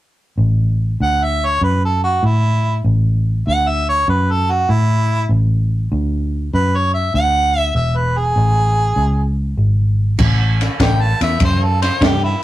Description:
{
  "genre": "electric blues shuffle",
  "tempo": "98 BPM",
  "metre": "4/4",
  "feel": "swing 68% on 8ths",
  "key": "A major",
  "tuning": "A4 = 440 Hz",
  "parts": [
    { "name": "vintage muted fingered electric bass", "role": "bass", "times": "0.4-12.3 s", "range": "E1 to A2", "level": "-16 LUFS", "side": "equal", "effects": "none" },
    { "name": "clear harmonica", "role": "melody", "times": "1.0-12.4 s", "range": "E4 to A5", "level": "-18 LUFS", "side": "right 1 dB", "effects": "overdrive" },
    { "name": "compact cocktail drum kit", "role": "drums", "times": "10.2-12.2 s", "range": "crash cymbal, kick drum, ride cymbal, snare drum", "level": "-17 LUFS", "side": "equal", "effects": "none" }
  ],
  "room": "light reverb",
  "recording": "rough rehearsal-room recording",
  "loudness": "-14 LUFS",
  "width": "side -15 dB against mid",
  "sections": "0.4-10.2 A section; 10.2-12.4 B section",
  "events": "none",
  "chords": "0.4 A5; 7.8 E; 10.2 A5"
}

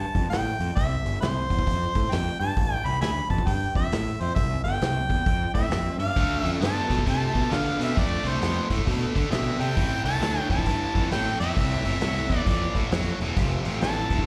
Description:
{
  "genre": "blues rock power trio and southern rock",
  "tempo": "133 BPM",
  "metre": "4/4",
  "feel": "swing 63% on 8ths",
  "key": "A minor",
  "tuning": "A4 = 439 Hz",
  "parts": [
    { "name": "clear harmonica", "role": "melody", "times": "0.0-14.2 s", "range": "C5 to B5", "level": "-31 LUFS", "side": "equal", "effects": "overdrive, slapback echo" },
    { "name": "fuzz picked electric bass", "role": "bass", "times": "0.0-14.2 s", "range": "E1 to D3", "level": "-30 LUFS", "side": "equal", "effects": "overdrive" },
    { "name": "vintage drum kit", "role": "drums", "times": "0.1-14.3 s", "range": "hi-hat, kick drum, snare drum", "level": "-30 LUFS", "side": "equal", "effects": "none" },
    { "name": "bluesy overdriven lead guitar", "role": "second line", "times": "5.5-14.2 s", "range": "A3 to F4", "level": "-37 LUFS", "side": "equal", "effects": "distortion, slapback echo" },
    { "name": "distorted electric guitar", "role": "riff", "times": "6.2-14.3 s", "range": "F2 to B3", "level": "-32 LUFS", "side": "equal", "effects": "overdrive" }
  ],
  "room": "little or no reverb",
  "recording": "live gig heard through the venue's PA, club reverb",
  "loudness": "-25 LUFS",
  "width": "mono",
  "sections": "0.0-14.3 A section",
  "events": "none",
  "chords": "0.0 Am7; 6.2 Dm7; 9.8 Am; 13.4 Fmaj7"
}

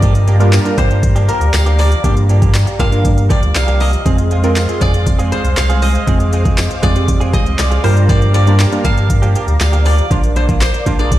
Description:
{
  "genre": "dance-pop",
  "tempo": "119 BPM",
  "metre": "4/4",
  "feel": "straight",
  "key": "unclear",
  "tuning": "A4 = 442 Hz",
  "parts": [
    { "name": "koto", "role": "melody", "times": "0.0-11.2 s", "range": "Bb4 to F5", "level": "-22 LUFS", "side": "left 1 dB", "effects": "digital delay" },
    { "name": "glassy digital keys", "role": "accompaniment", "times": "0.0-11.2 s", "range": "G3 to Bb4", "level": "-21 LUFS", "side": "right 2 dB", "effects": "chorus, sidechain pumping" },
    { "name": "filtered supersaw swell", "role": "sustained chords", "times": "0.0-11.2 s", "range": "Ab3 to D6", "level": "-24 LUFS", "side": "equal", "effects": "sidechain pumping" },
    { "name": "direct-recorded clean electric guitar", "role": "riff", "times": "0.0-11.2 s", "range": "F3 to Ab4", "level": "-24 LUFS", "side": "right 5 dB", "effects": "analog chorus" },
    { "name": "warm sub bass", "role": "bass", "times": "0.0-11.2 s", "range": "Bb1 to G2", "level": "-13 LUFS", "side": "equal", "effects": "sidechain pumping" },
    { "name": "smooth R&B drum kit", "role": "drums", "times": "0.0-11.2 s", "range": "handclaps, hi-hat, kick drum, snare drum", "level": "-16 LUFS", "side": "equal", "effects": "overdrive" },
    { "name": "tambourine", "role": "percussion", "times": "0.5-10.7 s", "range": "none", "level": "-30 LUFS", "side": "left 9 dB", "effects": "none" }
  ],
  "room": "digital ambience",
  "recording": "played on a big sound system in a bare room, large studio reverb",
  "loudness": "-11 LUFS",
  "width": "side -14 dB against mid",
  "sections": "0.0-11.2 A section",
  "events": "none",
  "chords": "0.0 Gm7; 4.1 Fm; 7.8 Gm7; 10.1 Bb"
}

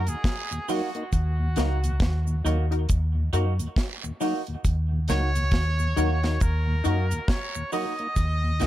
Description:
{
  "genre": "roots reggae",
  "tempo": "68 BPM",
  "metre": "4/4",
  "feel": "swing 60% on 16ths",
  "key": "Eb minor",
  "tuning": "A4 = 440 Hz",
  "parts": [
    { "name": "clear trumpet", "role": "melody", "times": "0.0-8.7 s", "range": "Gb4 to Eb5", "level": "-31 LUFS", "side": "right 1 dB", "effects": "tape echo" },
    { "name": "filtered dub chord stab", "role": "stabs", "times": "0.0-8.7 s", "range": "Eb4 to Bb4", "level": "-32 LUFS", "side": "left 6 dB", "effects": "chorus" },
    { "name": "vintage muted fingered electric bass", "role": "bass", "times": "0.0-8.7 s", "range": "Db2 to Gb2", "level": "-24 LUFS", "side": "equal", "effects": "none" },
    { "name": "mellow tonewheel organ", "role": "accompaniment", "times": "0.1-8.7 s", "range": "Eb2 to Eb4", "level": "-33 LUFS", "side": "left 1 dB", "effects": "chorus vibrato, slow rotary speaker" },
    { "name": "deep reggae drum kit", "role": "drums", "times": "0.1-8.7 s", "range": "hi-hat, kick drum, snare drum", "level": "-26 LUFS", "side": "equal", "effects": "none" },
    { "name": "cabasa and guiro", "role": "percussion", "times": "0.1-8.7 s", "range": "none", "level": "-39 LUFS", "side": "right 6 dB", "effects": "none" },
    { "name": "clean electric guitar", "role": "accompaniment", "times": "0.7-8.7 s", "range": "Gb3 to Gb4", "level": "-34 LUFS", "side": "right 5 dB", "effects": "phaser, tape echo" }
  ],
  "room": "little or no reverb",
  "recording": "none",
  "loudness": "-23 LUFS",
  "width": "side -14 dB against mid",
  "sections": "0.0-8.7 A section",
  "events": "none",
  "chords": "0.0 Ebm"
}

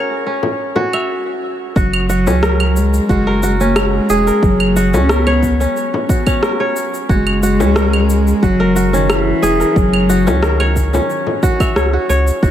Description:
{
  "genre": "organic downtempo",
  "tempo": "90 BPM",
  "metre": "4/4",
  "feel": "straight",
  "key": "unclear",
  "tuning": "A4 = 437 Hz",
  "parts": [
    { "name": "kora", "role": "arpeggios", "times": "0.0-12.5 s", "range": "C#4 to E5", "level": "-18 LUFS", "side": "equal", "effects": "tape echo" },
    { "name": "frame drum", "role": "percussion", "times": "0.4-11.4 s", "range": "none", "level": "-23 LUFS", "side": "left 4 dB", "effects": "none" },
    { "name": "electronic claves, shaker and rim click", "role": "drums", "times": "0.9-12.5 s", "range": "none", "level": "-21 LUFS", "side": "equal", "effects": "overdrive" },
    { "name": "dark cello", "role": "melody", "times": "1.8-12.5 s", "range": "D#3 to C#4", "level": "-17 LUFS", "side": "left 1 dB", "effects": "tape echo" },
    { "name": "warm sub bass", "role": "bass", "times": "1.8-12.5 s", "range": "E1 to C#2", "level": "-17 LUFS", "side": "equal", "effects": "none" },
    { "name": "electronic kick drum", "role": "drums", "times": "1.8-12.5 s", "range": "none", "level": "-16 LUFS", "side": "equal", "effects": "overdrive" }
  ],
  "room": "light reverb",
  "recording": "none",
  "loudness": "-12 LUFS",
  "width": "side -10 dB against mid",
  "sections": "0.0-1.8 A section; 1.8-12.5 B section",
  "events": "filter sweep on kora 0.0-1.8; stop 1.1-1.8",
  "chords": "0.0 F#7(no3); 1.8 C#m"
}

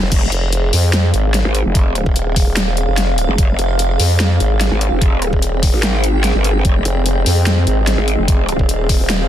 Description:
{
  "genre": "heavy wobble dubstep",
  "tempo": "147 BPM",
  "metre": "4/4",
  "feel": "half-time",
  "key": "F minor",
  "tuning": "A4 = 441 Hz",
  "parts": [
    { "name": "supersaw pad", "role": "sustained chords", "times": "0.0-9.3 s", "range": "Ab4 to G5", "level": "-25 LUFS", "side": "right 1 dB", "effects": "vintage 12-bit sampler grit, sidechain pumping, low-pass filter" },
    { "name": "formant-sweep wobble bass", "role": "bass", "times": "0.0-9.3 s", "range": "Eb1 to F2", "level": "-16 LUFS", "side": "equal", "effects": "chorus, overdrive" },
    { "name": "growl bass", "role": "bass", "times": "0.1-8.6 s", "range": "F1 to Ab1", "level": "-16 LUFS", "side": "equal", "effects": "chorus, overdrive" },
    { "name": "dubstep drum kit", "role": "drums", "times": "0.1-9.2 s", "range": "crash cymbal, hi-hat, snare drum", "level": "-20 LUFS", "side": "left 1 dB", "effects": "studio reverb" },
    { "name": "electronic kick drum", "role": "drums", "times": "0.1-9.0 s", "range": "none", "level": "-15 LUFS", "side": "equal", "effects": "overdrive, studio reverb" },
    { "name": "granular cloud pad", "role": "texture", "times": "0.7-9.3 s", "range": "C4 to G5", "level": "-23 LUFS", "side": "right 1 dB", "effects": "built-in reverb, sidechain pumping" }
  ],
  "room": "little or no reverb",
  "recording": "dense, heavily limited modern master",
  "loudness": "-13 LUFS",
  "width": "side -11 dB against mid",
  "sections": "0.1-9.3 A section",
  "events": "drop 0.1-9.3",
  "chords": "0.1 Fm"
}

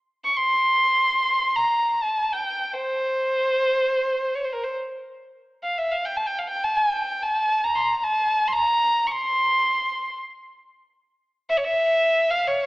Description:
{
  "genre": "Turkish makam ensemble",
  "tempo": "free time",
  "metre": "none",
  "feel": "none",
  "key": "C makam hicaz",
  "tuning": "A4 = 441 Hz",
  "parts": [
    { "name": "rich violin", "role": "solo", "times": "0.2-12.7 s", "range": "Bb4 to Db6", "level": "-20 LUFS", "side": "equal", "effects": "none" }
  ],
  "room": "wet scoring stage reverb, RT60 1.7 s",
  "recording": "AM radio sound",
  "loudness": "-20 LUFS",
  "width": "side -21 dB against mid",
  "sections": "0.0-4.9 A section; 4.9-12.7 A section",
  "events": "none",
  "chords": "none"
}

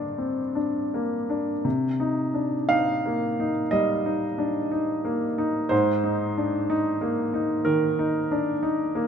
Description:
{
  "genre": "neoclassical minimalist piano",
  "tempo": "54-63 BPM",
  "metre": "4/4",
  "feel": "rubato",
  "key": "C minor",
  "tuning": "A4 = 440 Hz",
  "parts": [
    { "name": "clear grand piano", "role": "solo", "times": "0.0-9.1 s", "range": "Ab2 to F5", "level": "-23 LUFS", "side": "equal", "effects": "none" }
  ],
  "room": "moderate scoring stage reverb, RT60 1.6 s",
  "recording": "minimal, uncompressed stereo recording",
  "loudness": "-23 LUFS",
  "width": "side -7 dB against mid",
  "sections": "0.0-1.6 A section; 1.6-9.1 A section",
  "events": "none",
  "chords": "0.0 Gm; 1.6 Cm7; 5.7 Abadd9"
}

